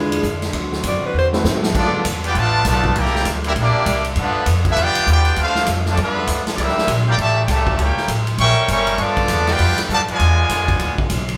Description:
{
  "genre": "jazz, big band swing",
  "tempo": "199 BPM",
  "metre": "4/4",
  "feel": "swing 62% on 8ths",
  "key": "unclear",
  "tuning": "A4 = 441 Hz",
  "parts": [
    { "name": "breathy alto saxophone", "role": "melody", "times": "0.0-1.3 s", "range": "Ab4 to D5", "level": "-25 LUFS", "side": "equal", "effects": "none" },
    { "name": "clear grand piano", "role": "accompaniment", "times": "0.0-1.4 s", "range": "Ab3 to B4", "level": "-27 LUFS", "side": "equal", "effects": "none" },
    { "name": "bright trombone section", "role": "sustained chords", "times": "0.0-1.7 s", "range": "D3 to F#4", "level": "-30 LUFS", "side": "equal", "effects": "none" },
    { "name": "upright bass", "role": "bass", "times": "0.0-11.4 s", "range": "G1 to Ab2", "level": "-22 LUFS", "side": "equal", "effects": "none" },
    { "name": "swinging big-band drum kit", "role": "drums", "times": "0.1-11.3 s", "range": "crash cymbal, hi-hat, kick drum, ride cymbal, snare drum", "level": "-25 LUFS", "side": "equal", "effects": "none" },
    { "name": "brilliant trumpet section", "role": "melody", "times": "1.8-11.1 s", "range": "A3 to C#6", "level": "-22 LUFS", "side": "equal", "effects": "none" },
    { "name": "muted trombone section", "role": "second line", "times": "1.8-11.1 s", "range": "Bb2 to G4", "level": "-26 LUFS", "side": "equal", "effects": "none" }
  ],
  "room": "wet large studio reverb, RT60 1.4 s",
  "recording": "band playing live in one room",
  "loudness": "-18 LUFS",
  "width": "mono",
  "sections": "0.0-1.7 A section; 1.7-11.4 B section",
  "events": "alto saxophone solo 0.0-1.7; drum fill 1.1-1.7",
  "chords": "0.0 E7b9; 0.5 D13; 1.7 G13; 3.0 C9; 4.2 G13; 5.4 Dm7; 6.0 G9; 6.6 C13; 7.8 C#dim7; 9.0 G13; 10.2 E7b9"
}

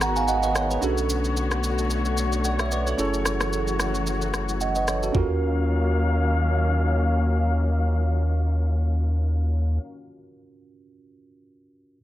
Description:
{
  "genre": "amapiano",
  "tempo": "111 BPM",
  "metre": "4/4",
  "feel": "swing 55% on 16ths",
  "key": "Eb minor",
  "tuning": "A4 = 444 Hz",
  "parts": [
    { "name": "bell-like tine electric piano", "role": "accompaniment", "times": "0.0-12.0 s", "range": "Cb4 to Bb5", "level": "-28 LUFS", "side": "right 4 dB", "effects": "phaser, low-pass filter" },
    { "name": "dark studio string section", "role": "sustained chords", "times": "0.0-9.8 s", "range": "D3 to F5", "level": "-28 LUFS", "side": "left 3 dB", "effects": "low-pass filter" },
    { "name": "warm sub bass", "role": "bass", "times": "0.0-9.8 s", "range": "Gb1 to Eb2", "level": "-24 LUFS", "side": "equal", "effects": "none" },
    { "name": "smooth R&B drum kit", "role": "drums", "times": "0.0-5.3 s", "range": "kick drum, rim click, shaker, toms", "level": "-29 LUFS", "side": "left 1 dB", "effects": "none" },
    { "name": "downlifter", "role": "sound effects", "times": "0.0-0.8 s", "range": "none", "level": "barely audible", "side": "none", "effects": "none" }
  ],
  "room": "digital ambience",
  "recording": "none",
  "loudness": "-21 LUFS",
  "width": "side -14 dB against mid",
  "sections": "0.0-5.1 A section; 5.1-9.5 B section",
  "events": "tine electric piano fill 0.0-0.8",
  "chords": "0.0 Abm9; 0.8 Bm9; 3.0 Gbm9; 5.1 Ebm9"
}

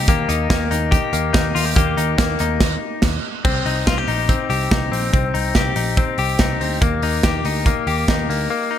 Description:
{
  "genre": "jangly indie pop",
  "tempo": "143 BPM",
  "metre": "4/4",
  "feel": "straight",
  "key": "unclear",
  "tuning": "A4 = 440 Hz",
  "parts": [
    { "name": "direct-recorded clean electric guitar", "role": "arpeggios", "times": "0.0-8.8 s", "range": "G3 to G4", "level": "-21 LUFS", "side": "left 6 dB", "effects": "none" },
    { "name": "vintage muted picked electric bass", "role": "bass", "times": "0.0-8.5 s", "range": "Bb1 to Eb2", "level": "-23 LUFS", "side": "right 1 dB", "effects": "none" },
    { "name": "modern studio drum kit", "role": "drums", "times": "0.1-8.4 s", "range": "crash cymbal, hi-hat, kick drum, snare drum", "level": "-20 LUFS", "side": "right 1 dB", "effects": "none" }
  ],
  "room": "moderate lush hall reverb, RT60 1.8 s, small room ambience",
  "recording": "big arena sound",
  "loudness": "-16 LUFS",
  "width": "side -10 dB against mid",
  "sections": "0.0-3.4 A section; 3.4-8.8 B section",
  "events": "band accent 2.6-3.4",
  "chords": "0.1 Eb; 3.4 Cm; 6.8 Eb"
}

